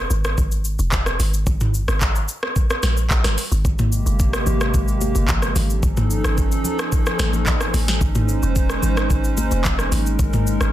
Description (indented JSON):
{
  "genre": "amapiano",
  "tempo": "110 BPM",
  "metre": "4/4",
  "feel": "straight",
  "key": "Ab major",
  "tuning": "A4 = 435 Hz",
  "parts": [
    { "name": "deep log drum bass", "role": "bass", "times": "0.0-10.7 s", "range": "F1 to Bb1", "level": "-21 LUFS", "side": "equal", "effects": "none" },
    { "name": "afro-pop drum kit", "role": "drums", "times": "0.1-10.7 s", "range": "handclaps, hi-hat, kick drum, rim click, shaker, snare drum, toms", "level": "-20 LUFS", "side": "equal", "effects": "soft clipping on snare" },
    { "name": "hollow soft pad", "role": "sustained chords", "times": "3.6-10.7 s", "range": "C3 to C5", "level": "-24 LUFS", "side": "right 1 dB", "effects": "chorus, sidechain pumping" },
    { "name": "congas", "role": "percussion", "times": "3.8-10.5 s", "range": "none", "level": "-29 LUFS", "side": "left 3 dB", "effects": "none" }
  ],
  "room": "digital ambience",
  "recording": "dense, heavily limited modern master",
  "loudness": "-17 LUFS",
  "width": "side -13 dB against mid",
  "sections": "0.0-10.7 A section",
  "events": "none",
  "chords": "0.0 Fm; 1.2 Absus2; 3.6 Abmaj9; 5.6 F7b13/Ab; 8.0 Dbmaj9/F; 9.9 Eb7sus4/Ab"
}